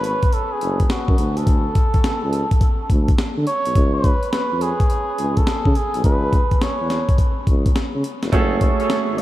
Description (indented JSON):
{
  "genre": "R&B, new jack swing",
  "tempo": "105 BPM",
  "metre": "4/4",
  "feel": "swing 66% on 16ths",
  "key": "unclear",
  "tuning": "A4 = 440 Hz",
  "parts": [
    { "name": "trumpet with cup mute", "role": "melody", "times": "0.0-9.2 s", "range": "F#4 to E#5", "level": "-24 LUFS", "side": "right 1 dB", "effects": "analog delay" },
    { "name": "warm tuba", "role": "bass", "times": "0.0-9.2 s", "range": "E#1 to D3", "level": "-22 LUFS", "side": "equal", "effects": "none" },
    { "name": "breakbeat sampler-style drum kit", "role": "drums", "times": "0.0-9.2 s", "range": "hi-hat, kick drum, snare drum", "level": "-18 LUFS", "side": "equal", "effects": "none" },
    { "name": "clear grand piano", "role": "accompaniment", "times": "8.3-9.2 s", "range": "A3 to G#4", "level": "-24 LUFS", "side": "right 5 dB", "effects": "none" },
    { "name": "warm horn section", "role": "stabs", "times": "8.3-9.0 s", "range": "C#4 to A4", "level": "-32 LUFS", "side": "left 1 dB", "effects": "analog delay" }
  ],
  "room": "moderate cathedral reverb, RT60 6.6 s",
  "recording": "dreamy mix soaked in reverb",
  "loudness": "-16 LUFS",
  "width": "side -15 dB against mid",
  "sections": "0.0-9.2 A section",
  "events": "none",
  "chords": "0.0 F#sus2; 1.2 D5; 3.8 C#7(no3); 8.3 F#madd9"
}